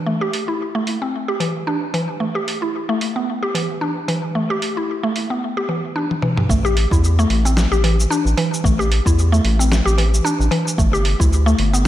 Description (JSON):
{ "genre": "organic downtempo", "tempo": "112 BPM", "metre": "4/4", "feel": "swing 56% on 16ths", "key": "A minor", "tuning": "A4 = 440 Hz", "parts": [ { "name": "mallet-like synth pluck", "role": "arpeggios", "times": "0.1-11.8 s", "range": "E3 to G4", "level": "-20 LUFS", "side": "equal", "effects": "chorus, ping-pong delay, slapback echo" }, { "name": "dusty soul sampler-style drum kit", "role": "drums", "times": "0.3-11.9 s", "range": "cabasa, hi-hat, snare drum, toms", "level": "-24 LUFS", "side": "right 1 dB", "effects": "overdrive" }, { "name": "round analog bass", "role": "bass", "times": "6.5-11.9 s", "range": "G1 to E2", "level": "-16 LUFS", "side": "equal", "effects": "sidechain pumping" }, { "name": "electronic kick drum", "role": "drums", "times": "6.5-11.3 s", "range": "none", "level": "-18 LUFS", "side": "equal", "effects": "overdrive" } ], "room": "moderate recital hall reverb, RT60 1.8 s", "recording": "big arena sound", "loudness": "-16 LUFS", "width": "side -13 dB against mid", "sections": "0.0-6.5 A section; 6.5-11.9 B section", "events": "drum fill 6.1-6.5", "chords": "0.0 A7(no3); 2.2 G5; 6.5 A5; 10.8 G5", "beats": "| 0.07 0.60 1.14 1.67 | 2.21 2.75 3.28 3.82 | 4.35 4.89 5.42 5.96 | 6.50 7.03 7.57 8.10 | 8.64 9.17 9.71 10.25 | 10.78 11.32 11.85" }